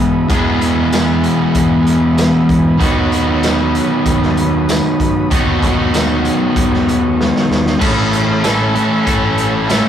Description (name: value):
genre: indie rock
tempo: 96 BPM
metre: 4/4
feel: straight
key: A lydian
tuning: A4 = 435 Hz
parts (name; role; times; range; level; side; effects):
- combo organ; sustained chords; 0.0-9.9 s; F#4 to E6; -24 LUFS; right 1 dB; none
- distorted electric guitar; riff; 0.0-9.9 s; E2 to A4; -13 LUFS; equal; distortion
- overdriven picked electric bass; bass; 0.0-9.8 s; A1 to F#2; -22 LUFS; equal; none
- raw garage drum kit; drums; 0.3-9.8 s; crash cymbal, hi-hat, kick drum, snare drum, tambourine; -18 LUFS; equal; none
room: moderate studio reverb, RT60 0.6 s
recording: rough rehearsal-room recording, warm saturation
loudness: -12 LUFS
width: side -9 dB against mid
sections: 0.0-7.8 A section; 7.8-9.9 B section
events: drum fill 7.2-7.8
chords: 0.0 Emaj7; 2.8 Badd9/D#; 7.8 Aadd9